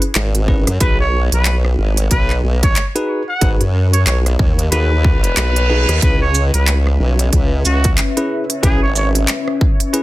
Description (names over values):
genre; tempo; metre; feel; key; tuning
glitch hop; 92 BPM; 4/4; swing 59% on 16ths; C# minor; A4 = 440 Hz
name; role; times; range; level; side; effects
bell-like tine electric piano; stabs; 0.0-10.0 s; C#4 to B4; -22 LUFS; equal; sidechain pumping, dub echo
dubstep drum kit; drums; 0.0-10.0 s; handclaps, hi-hat, rim click, shaker; -19 LUFS; right 1 dB; none
formant-sweep wobble bass; bass; 0.2-9.3 s; G#1 to F#2; -15 LUFS; equal; chorus
electronic kick drum; drums; 0.5-9.8 s; none; -15 LUFS; equal; none
warm trumpet; melody; 0.8-9.1 s; F#4 to F#5; -22 LUFS; right 1 dB; dub echo
reverse cymbal; sound effects; 5.1-6.0 s; none; -24 LUFS; right 5 dB; none
dark analog pad; sustained chords; 6.7-10.0 s; C#4 to E5; -23 LUFS; left 2 dB; chorus, sidechain pumping
room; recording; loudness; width
light reverb; dense, heavily limited modern master; -13 LUFS; side -17 dB against mid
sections
0.0-10.0 A section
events
reverse cymbal 5.1-6.0; kick drops out 5.4-6.0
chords
0.0 C#m7; 0.8 B6; 6.0 C#m7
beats
0.15 | 0.81 1.46 2.11 2.76 | 3.41 4.07 4.72 5.37 | 6.02 6.67 7.33 7.98 | 8.63 9.28 9.94